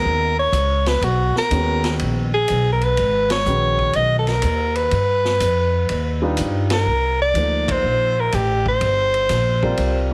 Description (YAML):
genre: modal jazz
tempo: 123 BPM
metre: 4/4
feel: swing 68% on 8ths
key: G# dorian, C dorian from 6.9 s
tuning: A4 = 440 Hz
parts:
  - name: warm soprano saxophone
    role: melody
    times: 0.0-10.1 s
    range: F#4 to D#5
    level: -21 LUFS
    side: equal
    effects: plate reverb
  - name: warm upright piano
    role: accompaniment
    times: 0.0-10.1 s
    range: D#3 to D5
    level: -27 LUFS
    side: equal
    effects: none
  - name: upright bass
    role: bass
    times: 0.0-10.1 s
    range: G1 to G2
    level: -24 LUFS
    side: equal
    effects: none
  - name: vintage drum kit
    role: drums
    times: 0.5-9.9 s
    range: hi-hat, kick drum, ride cymbal, snare drum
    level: -31 LUFS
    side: equal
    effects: none
room: light reverb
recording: heavily compressed radio sound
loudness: -19 LUFS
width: mono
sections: 0.0-6.9 A section; 6.9-10.1 B section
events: band accent 3.2, 6.6, 7.6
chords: 0.0 G#m9; 4.9 G7b13; 6.9 Cm9